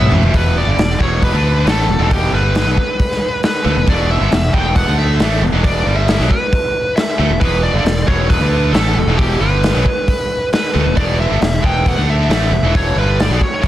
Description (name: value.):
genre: hard rock.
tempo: 135 BPM.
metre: 4/4.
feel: straight.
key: E dorian.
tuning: A4 = 440 Hz.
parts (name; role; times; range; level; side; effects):
high-gain lead guitar; melody; 0.0-13.7 s; G4 to G5; -19 LUFS; equal; distortion, tape echo.
tight distorted guitar; riff; 0.0-13.7 s; E2 to D4; -19 LUFS; right 1 dB; distortion.
overdriven fingered electric bass; bass; 0.0-13.7 s; E1 to D2; -16 LUFS; equal; none.
raw garage drum kit; drums; 0.0-13.7 s; hi-hat, kick drum, snare drum, toms; -17 LUFS; equal; none.
room: light reverb.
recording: dense, heavily limited modern master.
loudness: -12 LUFS.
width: side -13 dB against mid.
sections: 0.3-13.7 A section.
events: drum fill 0.0-0.3.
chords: 0.3 Em.